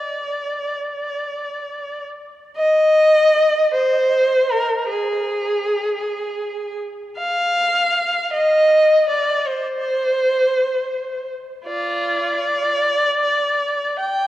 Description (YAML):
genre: classical, free, expressive piece for unaccompanied violin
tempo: 53 BPM (dotted quarters)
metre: 6/8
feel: uneven beats, rubato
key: unclear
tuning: A4 = 439 Hz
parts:
  - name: warm violin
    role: solo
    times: 0.0-14.3 s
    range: F4 to G5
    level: -17 LUFS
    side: equal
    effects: none
room: wet church reverb, RT60 3.7 s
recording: worn, warbling old tape, cassette tape, warbly pitch drift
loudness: -16 LUFS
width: side -14 dB against mid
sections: 0.0-2.5 A section; 2.5-14.3 B section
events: none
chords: none